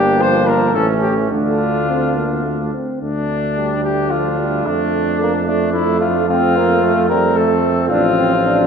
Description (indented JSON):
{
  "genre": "classical, brass quintet",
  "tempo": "110 BPM",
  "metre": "3/4",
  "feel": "rubato",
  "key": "D minor",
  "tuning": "A4 = 439 Hz",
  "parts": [
    { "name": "mellow trumpet", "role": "melody", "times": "0.0-8.7 s", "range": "D4 to C5", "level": "-18 LUFS", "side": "left 4 dB", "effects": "none" },
    { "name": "clear trumpet", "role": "second line", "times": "0.0-8.7 s", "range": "C4 to D4", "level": "-23 LUFS", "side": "right 4 dB", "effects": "none" },
    { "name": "brilliant trombone", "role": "accompaniment", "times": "0.0-8.7 s", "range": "D3 to D4", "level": "-21 LUFS", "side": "right 4 dB", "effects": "none" },
    { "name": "mellow French horn", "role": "accompaniment", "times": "0.0-8.7 s", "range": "F3 to C4", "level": "-23 LUFS", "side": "left 2 dB", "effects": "none" },
    { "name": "warm tuba", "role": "bass", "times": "0.0-8.7 s", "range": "G1 to F2", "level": "-20 LUFS", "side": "right 4 dB", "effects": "none" }
  ],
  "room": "wet concert hall reverb, RT60 2.0 s",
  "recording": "minimal, uncompressed stereo recording",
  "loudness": "-14 LUFS",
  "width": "side -6 dB against mid",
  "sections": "0.0-3.0 A section; 3.0-8.7 B section",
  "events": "none",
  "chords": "0.0 Gm; 0.7 A; 1.3 Dm; 4.7 Dm/F; 6.3 F; 7.9 F/A"
}